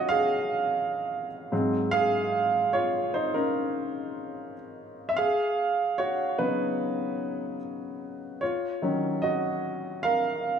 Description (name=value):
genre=R&B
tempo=74 BPM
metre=4/4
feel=straight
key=unclear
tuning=A4 = 442 Hz
part: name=warm baby grand piano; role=solo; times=0.0-10.6 s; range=Ab2 to F5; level=-25 LUFS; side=right 1 dB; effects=tape echo
room=wet plate reverb, RT60 2.4 s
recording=small room reverb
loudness=-25 LUFS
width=side -7 dB against mid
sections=0.0-10.6 A section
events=grand piano solo 0.0-10.6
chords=0.0 Ebm9; 1.5 Ab13; 5.2 Db9sus4; 8.4 Ebm9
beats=0.30 1.11 | 1.93 2.74 3.55 4.36 | 5.17 5.98 6.79 7.60 | 8.41 9.22 10.03